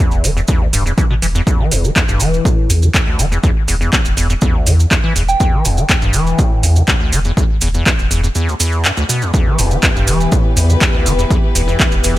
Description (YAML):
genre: acid house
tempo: 122 BPM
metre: 4/4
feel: straight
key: unclear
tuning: A4 = 440 Hz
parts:
  - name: acid bass, square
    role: riff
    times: 0.0-12.1 s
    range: D2 to E3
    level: -18 LUFS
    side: equal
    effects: overdrive, lush chorus, vintage 12-bit sampler grit, sidechain pumping, ping-pong delay
  - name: warm sub bass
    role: bass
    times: 0.1-12.2 s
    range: D1 to E2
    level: -16 LUFS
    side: equal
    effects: tube saturation, sidechain pumping
  - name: maracas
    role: percussion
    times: 0.1-12.1 s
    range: none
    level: -22 LUFS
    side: right 4 dB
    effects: none
  - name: booming analog drum machine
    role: drums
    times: 0.2-12.1 s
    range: handclaps, hi-hat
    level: -18 LUFS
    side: equal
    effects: none
  - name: electronic kick drum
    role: drums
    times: 0.5-11.9 s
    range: none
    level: -15 LUFS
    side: equal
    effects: none
  - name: soft synth bell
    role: melody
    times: 5.3-5.5 s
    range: G5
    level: -21 LUFS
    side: right 3 dB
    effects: chorus, tape echo
  - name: dark chamber string section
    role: sustained chords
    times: 9.3-12.2 s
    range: E3 to B4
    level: -21 LUFS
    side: left 2 dB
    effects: sidechain pumping
room: little or no reverb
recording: none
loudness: -12 LUFS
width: side -16 dB against mid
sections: 0.0-12.2 A section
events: none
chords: 0.0 Em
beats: 0.49 0.98 | 1.47 1.96 2.45 2.94 | 3.44 3.93 4.42 4.91 | 5.40 5.89 6.39 6.88 | 7.37 7.86 8.35 8.85 | 9.34 9.83 10.32 10.81 | 11.30 11.80